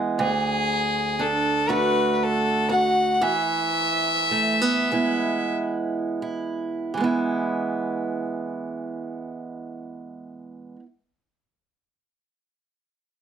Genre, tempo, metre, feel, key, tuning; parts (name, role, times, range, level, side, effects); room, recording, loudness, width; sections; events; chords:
celtic folk, Celtic slow air; 26-40 BPM (dotted quarters); 6/8; rubato; E mixolydian; A4 = 439 Hz
picked steel-string acoustic guitar; accompaniment; 0.0-10.9 s; D2 to F#4; -25 LUFS; right 4 dB
bright fiddle; melody; 0.2-5.5 s; G#4 to F#5; -22 LUFS; left 2 dB
wet studio reverb, RT60 0.6 s; -21 LUFS; side -8 dB against mid
0.2-7.0 A section; 7.0-11.4 B section
slowing down 0.2-7.0
0.2 D; 3.2 E